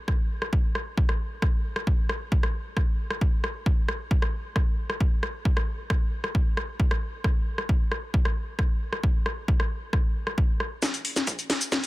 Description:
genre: techno.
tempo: 134 BPM.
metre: 4/4.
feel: straight.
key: none.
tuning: none.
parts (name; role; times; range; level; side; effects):
electronic kick drum; drums; 0.1-11.8 s; none; -24 LUFS; equal; high-pass filter on kick, high-pass filter on room.
techno drum kit; drums; 0.1-11.9 s; hi-hat, rim click, shaker, snare drum; -30 LUFS; equal; soft clipping on snare.
room: little or no reverb.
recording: dense, heavily limited modern master.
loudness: -24 LUFS.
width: side -19 dB against mid.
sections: 0.0-10.8 A section; 10.8-11.9 B section.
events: build-up 10.8-11.9; drum fill 10.8-11.9.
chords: none.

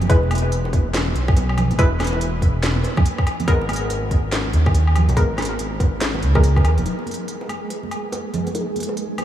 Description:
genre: deep dubstep.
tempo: 142 BPM.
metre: 4/4.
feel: swing 62% on 16ths, half-time.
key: Eb phrygian.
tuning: A4 = 441 Hz.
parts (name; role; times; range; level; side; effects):
dark detuned saw bass; bass; 0.0-6.9 s; Eb1 to Eb2; -19 LUFS; equal; none.
garage drum kit; drums; 0.0-9.2 s; handclaps, hi-hat, snare drum, woodblock; -26 LUFS; left 1 dB; none.
congas and bongos; percussion; 0.0-9.2 s; none; -28 LUFS; right 3 dB; dub echo.
filtered dub chord stab; stabs; 0.1-8.7 s; Gb3 to B4; -27 LUFS; left 2 dB; chorus, dub echo.
electronic kick drum; drums; 0.1-6.6 s; none; -17 LUFS; equal; none.
flickering grainy texture; texture; 7.4-9.2 s; Ab3 to Ab4; -28 LUFS; right 1 dB; built-in reverb, wide subtle chorus.
room: light reverb, digital ambience.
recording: small room ambience.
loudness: -17 LUFS.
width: side -11 dB against mid.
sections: 0.0-6.9 A section; 6.9-9.2 B section.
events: drop 0.0-6.9.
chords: 0.1 E; 3.5 Abmadd9; 6.9 Ebm.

